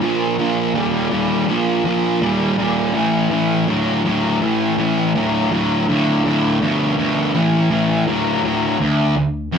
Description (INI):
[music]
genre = rock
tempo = 82 BPM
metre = 4/4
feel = straight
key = unclear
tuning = A4 = 440 Hz
[part]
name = fuzz guitar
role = solo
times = 0.0-9.6 s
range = D2 to G3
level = -16 LUFS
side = equal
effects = distortion
[sound]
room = moderate studio reverb, RT60 0.5 s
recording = band playing live in one room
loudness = -16 LUFS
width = side -6 dB against mid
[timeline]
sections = 0.0-8.8 A section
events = none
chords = 0.0 Bb5; 3.0 A5; 5.9 D5; 7.3 A5; 8.8 N.C.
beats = | 0.02 0.75 1.48 2.22 | 2.95 3.69 4.42 5.15 | 5.88 6.61 7.35 8.08 | 8.81 9.54